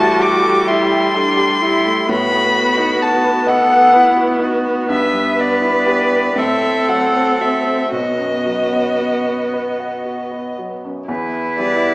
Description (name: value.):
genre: classical, slow romantic movement for piano quartet.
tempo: 37-43 BPM (dotted quarters).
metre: 6/8.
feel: rubato.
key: unclear.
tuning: A4 = 440 Hz.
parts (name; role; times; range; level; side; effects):
rich violin; melody; 0.0-11.9 s; D5 to D6; -17 LUFS; left 1 dB; none.
clear cello; second line; 0.0-11.9 s; D4 to B4; -19 LUFS; right 1 dB; none.
rich viola; accompaniment; 0.0-11.9 s; G3 to E4; -20 LUFS; right 1 dB; none.
warm concert grand piano; accompaniment; 0.0-11.9 s; B1 to G5; -21 LUFS; equal; none.
room: wet recital hall reverb, RT60 1.5 s.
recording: small speaker sound.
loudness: -13 LUFS.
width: side -22 dB against mid.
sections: 0.0-11.1 A section.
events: none.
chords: 0.0 Am7; 2.1 B7/A; 4.9 Em/G; 6.4 F#dim/A; 7.9 B; 11.1 Em.